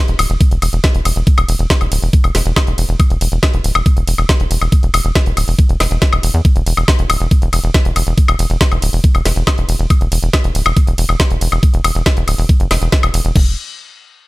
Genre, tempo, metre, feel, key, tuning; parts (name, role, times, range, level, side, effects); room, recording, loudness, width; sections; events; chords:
psychedelic trance; 139 BPM; 4/4; straight; A4 = 440 Hz
tight sequencer bass; bass; 0.1-13.6 s; D1 to E2; -15 LUFS; equal; tube saturation
drum and bass drum kit; drums; 0.1-13.4 s; crash cymbal, hi-hat, ride cymbal, snare drum, woodblock; -18 LUFS; left 1 dB; overdrive
electronic kick drum; drums; 0.4-13.4 s; -12 LUFS; equal; overdrive
digital ambience; -11 LUFS; side -21 dB against mid
0.0-13.4 A section
drop 0.0-13.4